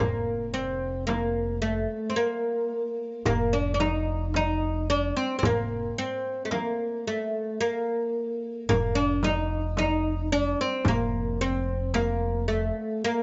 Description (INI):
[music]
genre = Turkish makam ensemble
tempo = 110 BPM (eighths)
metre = 10/8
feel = straight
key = F makam hicaz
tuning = A4 = 440 Hz
[part]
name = oud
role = melody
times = 0.0-13.2 s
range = A3 to Eb4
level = -29 LUFS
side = equal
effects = plate reverb
[part]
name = upright bass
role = bass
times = 0.0-12.7 s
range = F1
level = -32 LUFS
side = equal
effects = none
[part]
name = darbuka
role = percussion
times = 0.0-13.2 s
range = none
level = -35 LUFS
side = equal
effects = none
[part]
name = frame drum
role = percussion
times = 1.1-12.2 s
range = none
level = -34 LUFS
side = equal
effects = none
[sound]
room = light reverb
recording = nothing above 7.8 kHz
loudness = -27 LUFS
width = mono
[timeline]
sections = 0.0-13.2 A section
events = none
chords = none